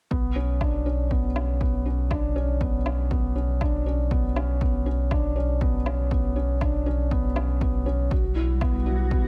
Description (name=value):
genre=piano and strings electronica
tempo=120 BPM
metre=4/4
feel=straight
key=B minor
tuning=A4 = 442 Hz
part: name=felt-muted upright piano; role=riff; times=0.1-9.3 s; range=B3 to F#4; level=-32 LUFS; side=equal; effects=delay
part: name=warm sub bass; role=bass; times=0.1-9.3 s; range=B1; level=-28 LUFS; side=equal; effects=sidechain pumping
part: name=electronic kick drum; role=drums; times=0.1-9.2 s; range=none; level=-29 LUFS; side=equal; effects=overdrive
part: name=woodblock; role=drums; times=0.6-8.7 s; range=none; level=-38 LUFS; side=equal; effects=overdrive
part: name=granular cloud pad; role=sustained chords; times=8.3-9.3 s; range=G3 to F#4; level=-36 LUFS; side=equal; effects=built-in reverb, sidechain pumping
room=digital ambience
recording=none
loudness=-25 LUFS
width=mono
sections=0.1-9.3 A section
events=none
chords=0.1 Bmadd9; 8.1 Emadd9/B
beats=| 0.11 0.61 1.11 1.61 | 2.11 2.61 3.11 3.61 | 4.11 4.61 5.11 5.61 | 6.11 6.61 7.11 7.61 | 8.11 8.61 9.11